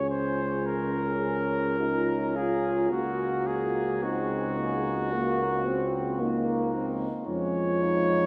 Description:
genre	classical, hymn-like piece for brass band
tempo	54 BPM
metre	4/4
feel	rubato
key	Db major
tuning	A4 = 440 Hz
part	warm flugelhorn	melody	0.0-8.3 s	Gb4 to Db5	-33 LUFS	equal	none
part	dark French horn section	second line	0.0-8.3 s	Eb4 to Ab4	-35 LUFS	equal	none
part	warm trombone	accompaniment	0.0-8.3 s	Ab3 to Db4	-36 LUFS	equal	none
part	warm tuba	bass	0.0-8.3 s	Db2 to F2	-35 LUFS	equal	none
part	clear euphonium	accompaniment	0.7-8.3 s	Bb3 to Gb4	-35 LUFS	equal	none
room	wet cathedral reverb, RT60 7.0 s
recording	recorded in a church or concert hall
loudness	-28 LUFS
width	mono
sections	0.0-8.3 A section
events	none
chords	0.0 Db; 2.9 Cdim/Db; 7.3 Db/F

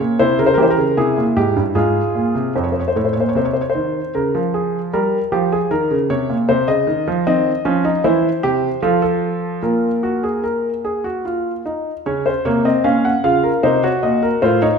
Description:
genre	classical, baroque-style 3-part fugue for grand piano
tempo	76 BPM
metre	3/4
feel	straight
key	Bb minor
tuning	A4 = 440 Hz
part	warm concert grand piano	solo	0.0-14.8 s	F2 to Gb5	-15 LUFS	equal	none
room	moderate recital hall reverb, RT60 1.6 s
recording	minimal, uncompressed stereo recording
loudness	-15 LUFS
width	side -6 dB against mid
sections	0.0-2.6 A section; 2.6-12.1 B section; 12.1-14.8 A section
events	none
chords	0.2 C7; 1.8 Fm/Ab; 2.6 F7; 4.1 Bbm/Db; 4.9 Eb7; 6.5 Cmadd11; 7.3 Dbmaj9/Eb; 8.0 C/E; 8.8 F; 9.6 Bb5; 12.1 Bbm; 13.6 Cdim

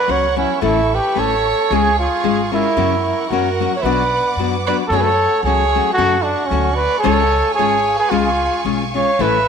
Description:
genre	mexican folk, mariachi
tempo	112 BPM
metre	2/4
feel	swing 53% on 8ths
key	B minor, F# minor from 4.9 s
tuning	A4 = 440 Hz
part	dark trumpet	melody	0.0-9.5 s	C#4 to C#5	-17 LUFS	right 1 dB	none
part	warm fiddle	second line	0.0-9.5 s	E4 to F#5	-23 LUFS	right 10 dB	none
part	warm symphonic violin section	sustained chords	0.0-9.5 s	A3 to D6	-27 LUFS	equal	none
part	nylon-string guitar	accompaniment	0.1-9.4 s	F#2 to A4	-21 LUFS	left 10 dB	none
part	upright bass	bass	0.1-9.5 s	G#1 to F#2	-23 LUFS	right 1 dB	none
room	wet echo chamber reverb, RT60 1.9 s, small room ambience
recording	1960s-style stereo with parts hard left and right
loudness	-14 LUFS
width	side -6 dB against mid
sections	0.0-4.9 A section; 4.9-9.5 B section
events	none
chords	0.0 F#; 0.6 A; 1.7 C#; 2.8 F#; 3.8 Bm; 4.9 F#m; 7.1 C#

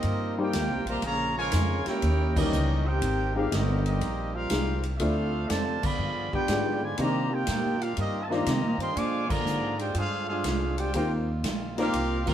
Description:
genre	jazz, big band swing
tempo	121 BPM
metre	4/4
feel	swing 68% on 8ths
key	Eb major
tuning	A4 = 440 Hz
part	warm trumpet section	melody	0.0-12.3 s	C4 to D6	-31 LUFS	right 1 dB	none
part	warm trombone section	second line	0.0-12.3 s	C3 to G4	-32 LUFS	equal	none
part	bright trombone section	sustained chords	0.0-12.3 s	C3 to Ab4	-41 LUFS	right 1 dB	none
part	upright bass	bass	0.0-12.3 s	G1 to C3	-29 LUFS	equal	none
part	swinging big-band drum kit	drums	0.0-12.3 s	crash cymbal, hi-hat, kick drum, ride cymbal, snare drum	-33 LUFS	right 1 dB	none
part	warm upright piano	accompaniment	0.4-11.9 s	Fb3 to Bb4	-31 LUFS	left 3 dB	none
room	moderate stone room reverb, RT60 1.0 s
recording	band playing live in one room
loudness	-25 LUFS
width	side -10 dB against mid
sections	0.0-12.3 A section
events	band accent 2.3, 5.7, 9.2, 12.2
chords	0.0 Eb69; 1.0 Bbm7; 2.0 Eb7b9; 3.0 Abmaj9; 5.0 Dm7; 6.0 G7b9; 7.0 Cm7; 9.0 Bb13; 10.9 Eb69

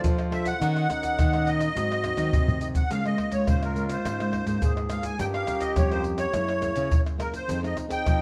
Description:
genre	samba and choro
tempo	105 BPM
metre	4/4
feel	straight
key	unclear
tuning	A4 = 440 Hz
part	growling trombone	second line	0.0-8.2 s	Eb4 to Ab4	-35 LUFS	equal	none
part	nylon-string guitar	accompaniment	0.0-8.2 s	Ab2 to C5	-35 LUFS	equal	none
part	nylon-string guitar	bass	0.0-8.2 s	F2 to F3	-33 LUFS	equal	none
part	maracas, surdo, pandeiro and tamborim	percussion	0.0-8.2 s	none	-29 LUFS	equal	none
part	musette accordion	melody	0.3-8.2 s	Bb4 to Ab5	-32 LUFS	equal	plate reverb
room	moderate studio reverb, RT60 0.6 s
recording	dark, warm production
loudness	-26 LUFS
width	mono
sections	0.0-8.2 A section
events	drum fill 2.0-2.9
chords	0.0 Bbmaj9 (rootless); 0.6 Ebm7; 1.8 Ab7; 2.9 Db6; 5.2 Gm7b5; 6.3 Gb9; 7.5 Fm7

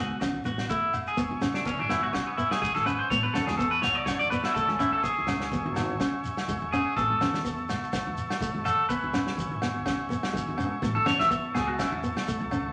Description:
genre	highlife guitar band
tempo	124 BPM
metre	4/4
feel	swing 55% on 16ths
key	E major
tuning	A4 = 442 Hz
part	nylon-string guitar	accompaniment	0.0-12.7 s	G#3 to C#4	-35 LUFS	equal	none
part	clean electric guitar	arpeggios	0.0-12.0 s	B3 to E5	-29 LUFS	equal	spring reverb
part	upright bass	bass	0.0-12.7 s	E1 to E2	-38 LUFS	equal	none
part	vintage drum kit	drums	0.2-12.4 s	kick drum, snare drum	-38 LUFS	equal	none
part	agogo bells	percussion	0.2-12.6 s	none	-40 LUFS	equal	none
part	congas	percussion	0.2-12.6 s	none	-44 LUFS	equal	none
part	shekere	percussion	0.2-12.6 s	none	-42 LUFS	equal	none
part	overdriven combo organ	sustained chords	1.2-12.7 s	E5 to C#6	-37 LUFS	equal	none
room	wet studio reverb, RT60 0.8 s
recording	none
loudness	-28 LUFS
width	mono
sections	0.0-1.2 A section; 1.2-12.7 B section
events	clean electric guitar solo 1.2-12.7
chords	0.0 E5; 1.2 E6; 3.1 A; 5.0 E6; 7.0 A; 8.9 E6; 10.8 A

